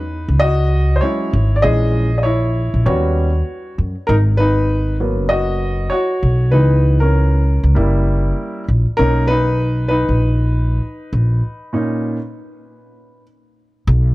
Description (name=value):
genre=hip hop, jazz-hop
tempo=98 BPM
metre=4/4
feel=swing 59% on 16ths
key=B major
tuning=A4 = 440 Hz
part: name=warm upright piano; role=accompaniment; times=0.0-13.2 s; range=A#2 to D#5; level=-19 LUFS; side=equal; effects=none
part: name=upright bass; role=bass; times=0.0-14.1 s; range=F#1 to F#2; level=-15 LUFS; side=equal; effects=none
room=small room ambience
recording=none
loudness=-14 LUFS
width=side -19 dB against mid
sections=0.0-13.9 A section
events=upright piano solo 0.0-13.9; break 11.4-13.9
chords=0.0 E69; 1.6 A#m7b5; 2.9 D#7alt; 4.1 G#m9; 6.5 C#m9; 7.8 F#7b9; 9.0 Bmaj9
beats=0.41 1.02 | 1.63 2.25 2.86 3.47 | 4.08 4.69 5.31 5.92 | 6.53 7.14 7.76 8.37 | 8.98 9.59 10.21 10.82 | 11.43 12.04 12.65 13.27 | 13.88